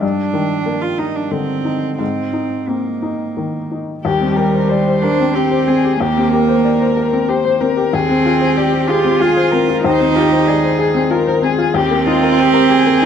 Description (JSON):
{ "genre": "neoclassical piano and strings", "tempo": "93 BPM", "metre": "3/4", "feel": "rubato", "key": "Eb major", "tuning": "A4 = 441 Hz", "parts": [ { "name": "rich cello", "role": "second line", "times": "0.0-13.1 s", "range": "G3 to G4", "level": "-16 LUFS", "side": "right 5 dB", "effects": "none" }, { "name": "clear upright piano", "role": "accompaniment", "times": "0.0-13.1 s", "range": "Eb2 to D5", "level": "-17 LUFS", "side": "left 4 dB", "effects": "none" }, { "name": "dark violin", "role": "melody", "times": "4.0-13.1 s", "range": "F4 to C5", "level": "-18 LUFS", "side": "left 5 dB", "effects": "none" } ], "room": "light reverb", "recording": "close, detailed microphones", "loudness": "-13 LUFS", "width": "side -8 dB against mid", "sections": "0.0-4.0 A section; 4.0-13.1 B section", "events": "none", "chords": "0.0 Ebmaj7/G; 2.0 Abadd9; 4.0 Eb6; 7.9 Ab6/Eb; 11.7 Eb6" }